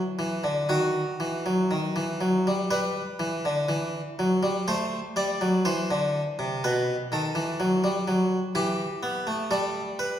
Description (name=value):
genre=classical, baroque-style two-part invention for harpsichord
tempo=61 BPM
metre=4/4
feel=straight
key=E minor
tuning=A4 = 441 Hz
part: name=harpsichord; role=solo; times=0.0-10.2 s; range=B2 to D5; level=-24 LUFS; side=equal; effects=none
room=wet recital hall reverb, RT60 1.7 s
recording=heard from further back in the room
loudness=-24 LUFS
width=side -10 dB against mid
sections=0.0-2.7 A section; 2.7-10.2 B section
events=none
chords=0.0 N.C.; 0.7 D#m; 2.7 Em; 4.7 Am; 6.6 B7; 8.6 Em